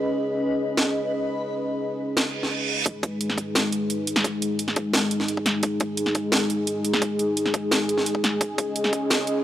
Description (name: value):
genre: half-time drum and bass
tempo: 173 BPM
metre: 4/4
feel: half-time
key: G# minor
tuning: A4 = 440 Hz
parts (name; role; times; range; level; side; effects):
- dark analog pad; sustained chords; 0.0-9.4 s; G#3 to D#5; -25 LUFS; equal; chorus, sidechain pumping
- backwards swelling texture; texture; 0.0-2.9 s; B4; -35 LUFS; left 2 dB; built-in reverb
- drum and bass drum kit; drums; 0.8-9.3 s; hi-hat, snare drum; -24 LUFS; equal; overdrive
- reverse cymbal and riser; sound effects; 2.3-2.9, 8.8-9.4 s; none; -29 LUFS; right 6 dB; none
- electronic kick drum; drums; 2.9-9.0 s; none; -25 LUFS; equal; overdrive, high-pass filter on kick
room: digital ambience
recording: dry, gritty hardware recording, high-pass filter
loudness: -22 LUFS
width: side -12 dB against mid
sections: 0.0-2.9 A section; 2.9-9.4 B section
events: reverse cymbal 2.3-2.9; build-up 2.9-9.4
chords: 0.0 C#5; 2.9 G#5; 8.4 C#5